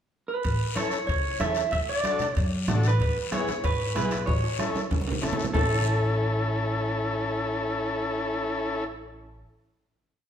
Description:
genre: latin, cumbia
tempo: 189 BPM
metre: 4/4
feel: straight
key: A major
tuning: A4 = 440 Hz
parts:
  - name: electric guitar through a small old amp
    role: melody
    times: 0.3-9.4 s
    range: A4 to E5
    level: -29 LUFS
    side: right 1 dB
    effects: spring reverb
  - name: upright bass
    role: bass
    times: 0.4-9.4 s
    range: A1 to G#2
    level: -29 LUFS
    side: equal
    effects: none
  - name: bombo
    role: percussion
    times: 0.4-5.6 s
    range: none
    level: -31 LUFS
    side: equal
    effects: none
  - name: guiro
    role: percussion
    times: 0.4-5.6 s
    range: none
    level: -38 LUFS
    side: left 5 dB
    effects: none
  - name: timbales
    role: percussion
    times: 0.4-5.6 s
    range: none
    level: -39 LUFS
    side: right 6 dB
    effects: none
  - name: overdriven combo organ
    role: accompaniment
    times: 0.8-8.8 s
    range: B3 to A4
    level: -29 LUFS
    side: left 2 dB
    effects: none
  - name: congas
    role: percussion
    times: 0.8-5.6 s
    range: none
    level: -34 LUFS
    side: right 3 dB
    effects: none
room: wet large studio reverb, RT60 1.3 s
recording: band playing live in one room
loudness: -24 LUFS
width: side -9 dB against mid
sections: 0.0-0.4 pickup bar; 0.4-5.5 A section; 5.5-8.1 final chord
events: drum fill 4.3-5.5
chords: 0.4 A; 1.7 D; 3.0 E; 4.3 A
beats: 0.13 | 0.45 0.77 1.09 1.41 | 1.73 2.05 2.37 2.69 | 3.00 3.32 3.64 3.96 | 4.28 4.60 4.92 5.23 | 5.55 5.87 6.18 6.50 | 6.82 7.14 7.46 7.77

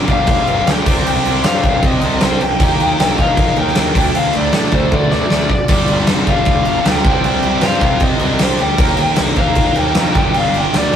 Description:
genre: hard rock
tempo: 155 BPM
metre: 4/4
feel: straight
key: G minor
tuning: A4 = 438 Hz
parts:
  - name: distorted electric guitar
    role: riff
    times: 0.0-11.0 s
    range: G2 to Eb4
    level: -20 LUFS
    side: equal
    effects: distortion
  - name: scooped high-gain guitar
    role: riff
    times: 0.0-11.0 s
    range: G2 to Eb4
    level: -24 LUFS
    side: left 4 dB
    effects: distortion
  - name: fuzz picked electric bass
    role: bass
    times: 0.0-11.0 s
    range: F1 to D3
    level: -21 LUFS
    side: equal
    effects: overdrive
  - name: smooth overdriven lead guitar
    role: melody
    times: 0.1-11.0 s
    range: C5 to G5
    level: -18 LUFS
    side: left 1 dB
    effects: none
  - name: huge arena drum kit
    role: drums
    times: 0.1-11.0 s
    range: crash cymbal, kick drum, snare drum, splash cymbal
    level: -15 LUFS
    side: equal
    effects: none
  - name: heavy high-gain guitar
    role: riff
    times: 5.7-11.0 s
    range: G2 to Eb4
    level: -26 LUFS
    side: right 5 dB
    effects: none
room: moderate studio reverb, RT60 0.5 s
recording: rough rehearsal-room recording, tube saturation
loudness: -12 LUFS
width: side -9 dB against mid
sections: 0.0-11.0 A section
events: drum fill 4.9-5.7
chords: 0.0 G5; 0.9 Cm; 2.6 Eb; 4.0 D5; 5.7 G5; 7.1 Cm; 8.8 Eb; 10.2 G5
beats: 0.28 0.67 | 1.05 1.44 1.83 2.21 | 2.60 2.99 3.37 3.76 | 4.15 4.54 4.92 5.31 | 5.70 6.09 6.47 6.86 | 7.25 7.64 8.02 8.41 | 8.80 9.19 9.57 9.96 | 10.35 10.74

